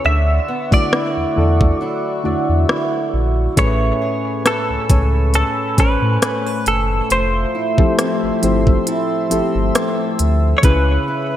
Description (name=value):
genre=contemporary R&B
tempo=68 BPM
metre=4/4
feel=swing 54% on 16ths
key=A major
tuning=A4 = 440 Hz
part: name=direct-recorded clean electric guitar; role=melody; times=0.0-11.4 s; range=A4 to E5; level=-21 LUFS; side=equal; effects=analog chorus, digital delay
part: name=soft electric-piano-like synth keys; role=accompaniment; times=0.0-11.4 s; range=A2 to G#5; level=-21 LUFS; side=left 2 dB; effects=chorus
part: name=chorused pulse-width pad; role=sustained chords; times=0.0-11.4 s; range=A3 to E6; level=-25 LUFS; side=left 3 dB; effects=none
part: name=fingerpicked swing-style acoustic guitar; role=arpeggios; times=0.0-11.4 s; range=C#3 to B4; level=-24 LUFS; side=right 4 dB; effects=wide subtle chorus, digital delay
part: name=sub bass with octave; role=bass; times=0.1-11.0 s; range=F1 to A2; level=-18 LUFS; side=equal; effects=none
part: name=trap drum kit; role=drums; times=0.7-10.9 s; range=hi-hat, kick drum, rim click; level=-18 LUFS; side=equal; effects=none
room=moderate lush hall reverb, RT60 2.3 s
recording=bright 1980s-style digital production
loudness=-14 LUFS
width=side -11 dB against mid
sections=0.0-11.4 A section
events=break 0.0-3.6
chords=0.0 Dmaj9; 3.6 Amaj9; 7.1 Fmaj7; 10.6 C#m7